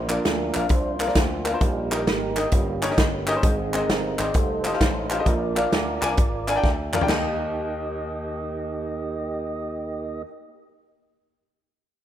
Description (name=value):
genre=uptempo gospel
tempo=132 BPM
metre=4/4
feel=swing 66% on 8ths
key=Eb major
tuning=A4 = 440 Hz
part: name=clear baby grand piano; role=accompaniment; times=0.0-10.3 s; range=Eb2 to Ab5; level=-27 LUFS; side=left 2 dB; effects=none
part: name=tonewheel organ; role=sustained chords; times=0.0-10.2 s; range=F3 to Eb5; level=-28 LUFS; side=right 3 dB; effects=overdrive, slow rotary speaker
part: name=slap bass with an envelope filter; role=bass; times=0.0-10.2 s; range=F1 to Eb2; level=-32 LUFS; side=equal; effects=none
part: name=natural country drum kit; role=drums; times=0.1-7.2 s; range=hi-hat, kick drum, snare drum, splash cymbal, toms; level=-23 LUFS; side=equal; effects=none
part: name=group handclap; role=percussion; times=0.1-7.4 s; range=none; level=-32 LUFS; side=right 1 dB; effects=none
room=light reverb, small room ambience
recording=rough home demo mix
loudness=-21 LUFS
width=side -11 dB against mid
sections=0.0-7.1 A section; 7.1-10.7 B section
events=tonewheel organ solo 0.0-7.1; drum fill 6.6-7.1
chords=0.0 Bb; 1.6 Eb/Bb; 2.5 Eb7/G; 3.4 Ab; 4.3 F9; 5.3 Bb; 7.1 Eb